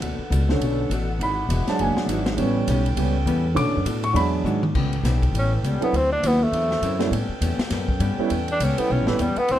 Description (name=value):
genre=jazz, big band swing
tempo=203 BPM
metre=4/4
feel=swing 60% on 8ths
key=A mixolydian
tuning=A4 = 440 Hz
part: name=archtop guitar, miked and amplified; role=accompaniment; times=0.0-9.6 s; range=A2 to F#4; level=-31 LUFS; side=left 5 dB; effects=none
part: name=mellow saxophone section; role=sustained chords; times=0.0-9.6 s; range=D3 to G5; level=-33 LUFS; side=right 1 dB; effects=none
part: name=upright bass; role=bass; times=0.0-9.6 s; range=E1 to B2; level=-23 LUFS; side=equal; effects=none
part: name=swinging big-band drum kit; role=drums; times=0.0-9.6 s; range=crash cymbal, hi-hat, kick drum, ride cymbal, snare drum, toms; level=-30 LUFS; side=left 1 dB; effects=none
part: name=warm concert grand piano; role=accompaniment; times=0.5-9.2 s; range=D3 to D6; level=-25 LUFS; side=right 3 dB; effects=none
part: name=warm tenor saxophone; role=melody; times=5.4-9.6 s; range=E3 to D4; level=-23 LUFS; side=equal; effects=none
room=light reverb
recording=dark, warm production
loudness=-20 LUFS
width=side -12 dB against mid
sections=0.0-4.8 A section; 4.8-9.6 A section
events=grand piano solo 0.0-4.8; drum fill 4.5; tenor saxophone solo 4.8-9.6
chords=0.0 Bm7; 1.2 E9; 2.4 A9; 3.6 Bm7; 4.2 E9; 4.8 A9; 5.9 D9; 7.1 A9